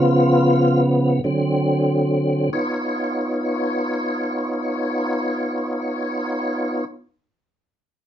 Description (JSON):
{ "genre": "blues", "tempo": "free time", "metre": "none", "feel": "none", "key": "Db mixolydian", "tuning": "A4 = 439 Hz", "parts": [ { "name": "tonewheel organ", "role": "sustained chords", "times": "0.0-6.8 s", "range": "Db3 to Db5", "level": "-18 LUFS", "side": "equal", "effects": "overdrive, chorus vibrato, slow rotary speaker" } ], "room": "moderate studio ambience, RT60 0.5 s", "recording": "nothing above 7.7 kHz", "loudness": "-19 LUFS", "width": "side -10 dB against mid", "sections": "0.0-2.5 A section; 2.5-7.9 B section", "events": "slowing down 0.0-2.5; tonewheel organ solo 0.0-2.5; stop 0.0-1.3", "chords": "0.0 Db7; 1.3 D7; 2.5 Db9", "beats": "free time" }